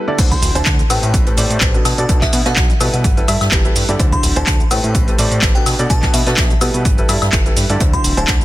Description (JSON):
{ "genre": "piano house", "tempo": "126 BPM", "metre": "4/4", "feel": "swing 54% on 16ths", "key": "unclear", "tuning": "A4 = 440 Hz", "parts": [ { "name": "clear upright piano", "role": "riff", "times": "0.0-8.3 s", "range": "A2 to E5", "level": "-20 LUFS", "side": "equal", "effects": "sidechain pumping, dub echo" }, { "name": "fat analog bass", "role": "bass", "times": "0.2-8.4 s", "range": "D1 to B2", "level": "-19 LUFS", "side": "equal", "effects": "tube saturation, sidechain pumping" }, { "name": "electronic kick drum", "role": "drums", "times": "0.2-8.4 s", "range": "none", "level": "-16 LUFS", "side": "equal", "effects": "high-pass filter on kick" }, { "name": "jazz brush drum kit", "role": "drums", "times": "0.2-8.4 s", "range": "hi-hat, snare drum", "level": "-27 LUFS", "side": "right 2 dB", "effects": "high-pass filter on hats, soft clipping on snare, high-pass filter on snare, high-pass filter on room" }, { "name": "punchy analog drum machine", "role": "drums", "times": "0.2-8.4 s", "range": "cabasa, crash cymbal, handclaps, hi-hat, woodblock", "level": "-19 LUFS", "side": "left 1 dB", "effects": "none" }, { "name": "glassy synth bell", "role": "melody", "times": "0.3-8.3 s", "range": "E5 to C6", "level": "-25 LUFS", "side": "equal", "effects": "chorus, dub echo" } ], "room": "small room reverb", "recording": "dense, heavily limited modern master", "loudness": "-12 LUFS", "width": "side -15 dB against mid", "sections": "0.2-8.4 A section", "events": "break 0.0; drop 0.2-8.4", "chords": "0.2 D9; 0.9 Am9; 1.9 Bm7; 3.0 G69; 4.0 D9; 4.7 Am9; 5.7 Bm7; 6.9 G69; 7.8 D9" }